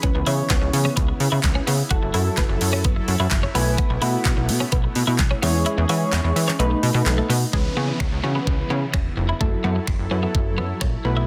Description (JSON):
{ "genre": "dance-pop", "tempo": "128 BPM", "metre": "4/4", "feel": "straight", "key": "C# minor", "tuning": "A4 = 440 Hz", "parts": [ { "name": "soft electric-piano-like synth keys", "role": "accompaniment", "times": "0.0-11.3 s", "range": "E3 to G#5", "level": "-29 LUFS", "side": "equal", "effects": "chorus, phaser, sidechain pumping" }, { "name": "soft supersaw", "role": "sustained chords", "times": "0.0-11.3 s", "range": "C#3 to A4", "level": "-33 LUFS", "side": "equal", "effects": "sidechain pumping" }, { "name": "twelve-string electric guitar", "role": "riff", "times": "0.0-11.2 s", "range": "G#3 to F#4", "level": "-31 LUFS", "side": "equal", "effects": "analog chorus" }, { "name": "plucky analog bass", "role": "bass", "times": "0.0-11.3 s", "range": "E1 to E3", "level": "-25 LUFS", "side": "equal", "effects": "sidechain pumping" }, { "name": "pop drum kit", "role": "drums", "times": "0.0-10.9 s", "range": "finger snaps, handclaps, hi-hat, kick drum, snare drum", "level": "-26 LUFS", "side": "equal", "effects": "overdrive, soft clipping on snare" }, { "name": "downlifter", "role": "sound effects", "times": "7.5-11.3 s", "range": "none", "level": "-38 LUFS", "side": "equal", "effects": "none" } ], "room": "light reverb", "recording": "dense, heavily limited modern master", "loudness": "-21 LUFS", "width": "mono", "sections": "0.0-7.5 A section; 7.5-11.3 B section", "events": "synth keys fill 3.1-3.8; kick muted 5.7-7.5", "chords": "0.0 C#m7; 1.9 F#m7; 3.5 B7sus4; 5.4 E6; 6.6 B7; 7.5 C#m7; 9.4 F#m7", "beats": "| 0.03 0.50 0.97 1.44 | 1.91 2.38 2.85 3.31 | 3.78 4.25 4.72 5.19 | 5.66 6.13 6.59 7.06 | 7.53 8.00 8.47 8.94 | 9.41 9.88 10.35 10.81" }